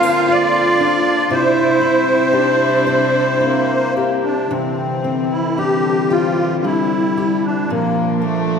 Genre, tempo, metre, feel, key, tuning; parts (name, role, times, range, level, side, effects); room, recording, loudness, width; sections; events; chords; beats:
celtic folk, Celtic slow air; 54-59 BPM; 3/4; rubato; C mixolydian; A4 = 440 Hz
musette accordion; melody; 0.0-8.6 s; A3 to F5; -17 LUFS; equal
dark cello; second line; 0.0-8.6 s; E3 to F4; -20 LUFS; right 2 dB
fingerpicked steel-string acoustic guitar; accompaniment; 0.0-8.6 s; Bb2 to C5; -21 LUFS; left 4 dB
rich chamber string section; sustained chords; 0.0-8.6 s; Bb2 to E4; -26 LUFS; left 1 dB
wet church reverb, RT60 2.8 s; recorded in a church or concert hall; -14 LUFS; side -6 dB against mid
0.0-4.5 A section; 4.5-8.6 B section
0.0 Bbadd9; 1.3 C; 4.5 Cadd9; 7.7 Bb
0.30 | 1.32 2.35 3.43 | 4.52 5.58 6.65 | 7.70